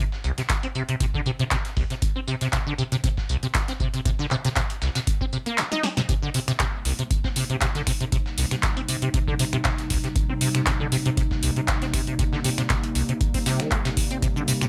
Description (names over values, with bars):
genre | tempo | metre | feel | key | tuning
acid house | 118 BPM | 4/4 | swing 54% on 16ths | C minor | A4 = 440 Hz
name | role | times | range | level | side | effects
acid bass, saw | riff | 0.0-14.7 s | C2 to Eb4 | -28 LUFS | equal | tube saturation, ensemble chorus, sidechain pumping
dusty soul sampler-style drum kit | drums | 0.1-14.7 s | hi-hat, snare drum, tambourine | -38 LUFS | equal | high-pass filter on snare, sidechain pumping on perc, high-pass filter on perc, sidechain pumping on hats, high-pass filter on hats, high-pass filter on room
electro analog drum machine | drums | 0.4-14.7 s | finger snaps, handclaps, hi-hat, shaker, snare drum | -30 LUFS | equal | none
electronic kick drum | drums | 0.5-14.3 s | none | -28 LUFS | equal | none
warbly tape-like pad | sustained chords | 6.9-14.7 s | C3 to G4 | -33 LUFS | equal | chorus, built-in reverb, sidechain pumping
room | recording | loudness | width
light reverb | none | -25 LUFS | mono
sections
0.0-14.7 A section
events
kick drops out 5.6-6.1; drum fill 5.7-6.1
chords
0.0 Cm7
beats
0.50 1.00 1.51 | 2.02 2.53 3.04 3.55 | 4.05 4.56 5.07 5.58 | 6.09 6.60 7.11 7.61 | 8.12 8.63 9.14 9.65 | 10.16 10.66 11.17 11.68 | 12.19 12.70 13.21 13.72 | 14.22